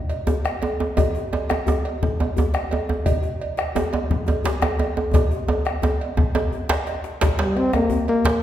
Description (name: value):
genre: west african traditional, West African drum ensemble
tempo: 115 BPM (dotted quarters)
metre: 12/8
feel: straight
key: unclear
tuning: A4 = 436 Hz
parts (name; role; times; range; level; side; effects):
- cowbell; percussion; 0.1-8.2 s; none; -31 LUFS; right 6 dB; none
- djembe; percussion; 0.1-8.4 s; none; -28 LUFS; left 3 dB; none
- djembe; percussion; 0.3-8.4 s; none; -23 LUFS; right 2 dB; none
- bombo; percussion; 0.5-8.4 s; none; -25 LUFS; left 2 dB; none
- dark trombone; melody; 7.4-8.4 s; G3 to C4; -19 LUFS; left 1 dB; none
room: wet recital hall reverb, RT60 1.8 s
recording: recorded in a church or concert hall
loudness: -20 LUFS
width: side -11 dB against mid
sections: 0.0-7.2 A section; 7.2-8.4 B section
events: drum fill 5.1-7.2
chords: none